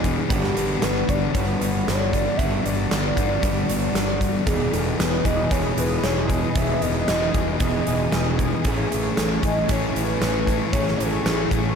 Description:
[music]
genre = rock, shoegaze and dream pop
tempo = 115 BPM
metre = 4/4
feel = straight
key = E major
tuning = A4 = 440 Hz
[part]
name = fingerpicked twelve-string acoustic guitar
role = arpeggios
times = 0.0-11.8 s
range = E3 to G#4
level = -34 LUFS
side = left 6 dB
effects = wide subtle chorus, tape echo
[part]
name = electric guitar at the edge of break-up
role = riff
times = 0.0-11.8 s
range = E2 to G#4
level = -28 LUFS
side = right 11 dB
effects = reverse reverb
[part]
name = thick fuzz guitar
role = riff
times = 0.0-11.8 s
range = E2 to A3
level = -26 LUFS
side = left 10 dB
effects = distortion, wide subtle chorus
[part]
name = fuzz fingered electric bass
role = bass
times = 0.0-11.7 s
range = E1 to A1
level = -27 LUFS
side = equal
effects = overdrive
[part]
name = huge arena drum kit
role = drums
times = 0.0-11.6 s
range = hi-hat, kick drum, snare drum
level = -25 LUFS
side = right 1 dB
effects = none
[part]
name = pure sine lead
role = melody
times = 0.3-11.8 s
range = G4 to E5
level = -28 LUFS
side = left 1 dB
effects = chorus, phaser, tape echo
[part]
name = phased analog pad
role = sustained chords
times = 4.8-11.8 s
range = A3 to D#6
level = -33 LUFS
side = right 2 dB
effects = phaser, chorus
[sound]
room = light reverb, small room ambience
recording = none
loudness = -19 LUFS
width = side -6 dB against mid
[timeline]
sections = 0.0-11.8 A section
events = none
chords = 0.3 Gmaj7; 4.5 Emaj7; 8.6 Amaj7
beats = | 0.29 0.81 1.33 1.86 | 2.38 2.90 3.42 3.95 | 4.47 4.99 5.51 6.04 | 6.56 7.08 7.60 8.13 | 8.65 9.17 9.69 10.21 | 10.73 11.25

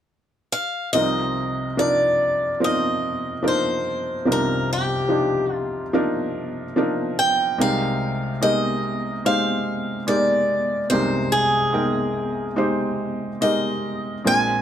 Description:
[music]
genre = acoustic folk-pop ballad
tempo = 72 BPM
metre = 4/4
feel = straight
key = C minor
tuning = A4 = 441 Hz
[part]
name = picked swing-style acoustic guitar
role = melody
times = 0.5-14.6 s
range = G4 to Ab5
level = -22 LUFS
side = equal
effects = none
[part]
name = felt-muted upright piano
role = accompaniment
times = 0.9-14.6 s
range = Bb1 to G5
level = -23 LUFS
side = equal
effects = none
[sound]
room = moderate studio reverb, RT60 0.6 s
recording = none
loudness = -20 LUFS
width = side -9 dB against mid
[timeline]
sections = 0.9-14.6 A section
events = none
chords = 0.0 N.C.; 0.9 Cm11; 7.6 Fm11/C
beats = 0.10 | 0.93 1.77 2.61 3.44 | 4.28 5.11 5.94 6.76 | 7.59 8.42 9.25 10.07 | 10.91 11.74 12.57 13.41 | 14.25

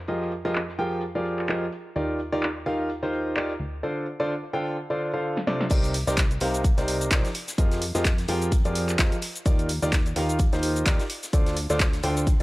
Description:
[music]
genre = piano house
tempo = 128 BPM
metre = 4/4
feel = swing 56% on 16ths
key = unclear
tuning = A4 = 439 Hz
[part]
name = plucky analog bass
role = bass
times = 0.0-12.4 s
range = C2 to F2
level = -31 LUFS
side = equal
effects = sidechain pumping
[part]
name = clear concert grand piano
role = riff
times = 0.1-12.4 s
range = C3 to G5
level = -27 LUFS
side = equal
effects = sidechain pumping, tape echo
[part]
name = huge arena drum kit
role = drums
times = 0.1-12.4 s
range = hi-hat, snare drum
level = -43 LUFS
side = left 2 dB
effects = none
[part]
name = punchy analog drum machine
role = drums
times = 0.6-12.4 s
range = crash cymbal, handclaps, hi-hat, shaker, snare drum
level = -29 LUFS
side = equal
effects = low-pass filter on snare, low-pass filter on hats, low-pass filter on cymbals, low-pass filter on perc, low-pass filter on room
[part]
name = electronic kick drum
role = drums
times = 5.7-12.4 s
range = none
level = -22 LUFS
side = equal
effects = none
[sound]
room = small room ambience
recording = dry, gritty hardware recording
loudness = -23 LUFS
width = side -19 dB against mid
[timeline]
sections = 0.0-5.7 A section; 5.7-12.4 B section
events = drum fill 5.4-5.7; drop 5.7-12.4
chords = 0.0 Fm11; 2.0 Ebmaj9; 3.6 Dm7; 5.7 Cm9; 7.3 Fm11; 9.5 Ebmaj9; 11.1 Dm7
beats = | 0.08 0.55 1.02 1.49 | 1.96 2.43 2.90 3.36 | 3.83 4.30 4.77 5.24 | 5.71 6.18 6.64 7.11 | 7.58 8.05 8.52 8.99 | 9.46 9.93 10.39 10.86 | 11.33 11.80 12.27

